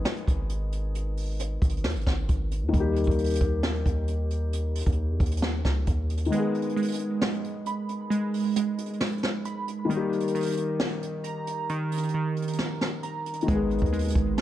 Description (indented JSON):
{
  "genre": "hip hop, trap",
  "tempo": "134 BPM",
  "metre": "4/4",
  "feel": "half-time",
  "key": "G# harmonic minor",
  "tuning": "A4 = 440 Hz",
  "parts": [
    { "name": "felt-muted upright piano", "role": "accompaniment", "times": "0.0-14.4 s", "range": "D#3 to G#4", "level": "-31 LUFS", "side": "left 4 dB", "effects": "low-pass filter" },
    { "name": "long sustained 808-style bass", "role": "bass", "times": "0.0-6.3, 13.5-14.4 s", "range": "G#1 to E2", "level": "-28 LUFS", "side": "equal", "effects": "none" },
    { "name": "jazz brush drum kit", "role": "drums", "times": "0.1-14.4 s", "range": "hi-hat, kick drum, snare drum", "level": "-28 LUFS", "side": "equal", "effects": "vintage 12-bit sampler grit" },
    { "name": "glassy digital keys", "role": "arpeggios", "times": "6.3-14.4 s", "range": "D#3 to B5", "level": "-28 LUFS", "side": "right 4 dB", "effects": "chorus, low-pass filter, tape echo" }
  ],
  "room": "studio ambience",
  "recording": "none",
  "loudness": "-25 LUFS",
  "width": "side -13 dB against mid",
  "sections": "0.0-14.4 A section",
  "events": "kick muted 6.3-13.5",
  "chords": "0.0 G#m; 2.7 D#; 6.3 G#m; 9.9 D#; 13.5 G#m"
}